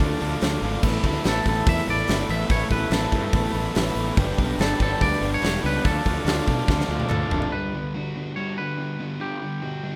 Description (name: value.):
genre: indie rock.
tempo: 144 BPM.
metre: 4/4.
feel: straight.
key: unclear.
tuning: A4 = 440 Hz.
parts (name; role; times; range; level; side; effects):
twangy electric guitar; melody; 0.0-10.0 s; G4 to E5; -31 LUFS; equal; spring reverb.
combo organ; sustained chords; 0.0-7.5 s; D4 to D6; -35 LUFS; equal; none.
biting overdriven guitar; riff; 0.0-10.0 s; D3 to A4; -35 LUFS; equal; none.
overdriven semi-hollow guitar; riff; 0.0-10.0 s; G2 to B4; -31 LUFS; equal; lush chorus.
fuzz fingered electric bass; bass; 0.0-7.4 s; E1 to B2; -29 LUFS; equal; overdrive.
big rock drum kit; drums; 0.0-7.5 s; crash cymbal, hi-hat, kick drum, snare drum, toms; -27 LUFS; equal; none.
group handclap; percussion; 0.2-7.2 s; none; -44 LUFS; equal; none.
room: little or no reverb.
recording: rough home demo mix.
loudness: -24 LUFS.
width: mono.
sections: 0.0-7.5 A section; 7.5-10.0 B section.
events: drum fill 6.7-7.5.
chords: 0.0 Dm; 0.8 Asus2; 4.2 Gadd9; 5.8 Dm; 7.5 Gmaj7.